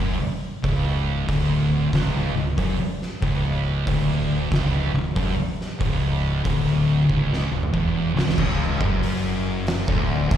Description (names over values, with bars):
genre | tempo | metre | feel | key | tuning
stoner and doom metal | 93 BPM | 4/4 | swing 66% on 8ths | unclear | A4 = 440 Hz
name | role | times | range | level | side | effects
thick fuzz guitar | riff | 0.0-10.4 s | C#2 to F#2 | -23 LUFS | left 4 dB | distortion
thick fuzz guitar | riff | 0.0-8.4 s | C#2 to F#2 | -26 LUFS | right 12 dB | distortion, slapback echo
fuzz fingered electric bass | bass | 0.0-10.4 s | C#1 to F#1 | -28 LUFS | right 1 dB | overdrive, tube saturation
oversized low-tuned drum kit | drums | 0.6-10.4 s | crash cymbal, hi-hat, kick drum, snare drum, toms | -26 LUFS | right 1 dB | none
fuzz guitar | riff | 8.4-10.4 s | C#2 to F#2 | -27 LUFS | right 3 dB | distortion, slapback echo
room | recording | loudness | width
light reverb | live gig heard through the venue's PA, recital hall reverb | -20 LUFS | side -10 dB against mid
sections
0.0-8.4 A section; 8.4-10.4 B section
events
drum fill 7.1-8.4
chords
0.0 C#m; 8.4 Dmaj7/C#